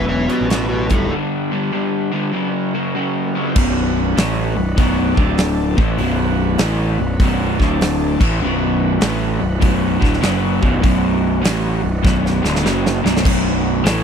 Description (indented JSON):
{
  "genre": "blues rock power trio and southern rock",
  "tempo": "99 BPM",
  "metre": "4/4",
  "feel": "swing 66% on 8ths",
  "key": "B minor",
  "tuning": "A4 = 440 Hz",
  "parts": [
    { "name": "overdriven slide guitar", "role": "melody", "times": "0.0-1.1 s", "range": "E4 to E5", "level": "-22 LUFS", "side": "left 1 dB", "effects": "slapback echo" },
    { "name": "dark smooth lead guitar", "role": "second line", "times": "0.0-1.1 s", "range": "F#4 to C#5", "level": "-30 LUFS", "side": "right 5 dB", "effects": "overdrive" },
    { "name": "overdriven tonewheel organ", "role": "sustained chords", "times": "0.0-14.0 s", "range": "G3 to D5", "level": "-29 LUFS", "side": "right 7 dB", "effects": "slow rotary speaker" },
    { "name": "crunchy overdriven guitar", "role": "riff", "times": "0.0-14.0 s", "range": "B1 to A3", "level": "-19 LUFS", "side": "left 1 dB", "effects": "none" },
    { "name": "fuzz picked electric bass", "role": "bass", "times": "0.0-14.0 s", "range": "B0 to A1", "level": "-20 LUFS", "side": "equal", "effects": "overdrive" },
    { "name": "huge arena drum kit", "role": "drums", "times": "0.3-14.0 s", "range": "crash cymbal, hi-hat, kick drum, snare drum", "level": "-19 LUFS", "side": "equal", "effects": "none" }
  ],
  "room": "little or no reverb",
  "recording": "dry, close 1970s-style studio recording",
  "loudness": "-15 LUFS",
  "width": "side -7 dB against mid",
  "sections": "0.0-3.6 A section; 3.6-13.2 B section",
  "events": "break 1.1-3.6; drum fill 12.0-13.2",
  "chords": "0.0 Bm; 0.8 G/B; 2.3 F#; 3.6 Bm; 5.1 D5; 5.7 Bm; 7.5 D5; 8.1 Bm"
}